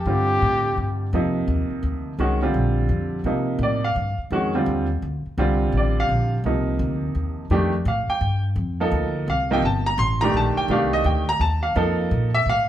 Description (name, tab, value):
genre	modal jazz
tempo	170 BPM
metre	3/4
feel	swing 64% on 8ths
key	C dorian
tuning	A4 = 441 Hz
part	breathy trumpet	melody	0.0-1.0 s	G4	-22 LUFS	left 1 dB	none
part	upright bass	bass	0.0-12.7 s	G1 to C3	-23 LUFS	equal	none
part	clear baby grand piano	accompaniment	0.1-12.7 s	C3 to C6	-22 LUFS	right 1 dB	none
room	moderate large studio reverb, RT60 1.2 s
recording	band playing live in one room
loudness	-20 LUFS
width	side -12 dB against mid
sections	0.0-3.3 A section; 3.3-12.7 B section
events	none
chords	0.0 C9sus4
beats	| 0.07 0.42 0.78 | 1.13 1.48 1.84 | 2.19 2.55 2.90 | 3.26 3.61 3.97 | 4.32 4.67 5.03 | 5.38 5.74 6.09 | 6.45 6.80 7.15 | 7.51 7.86 8.22 | 8.57 8.92 9.28 | 9.63 9.99 10.34 | 10.69 11.05 11.40 | 11.76 12.11 12.46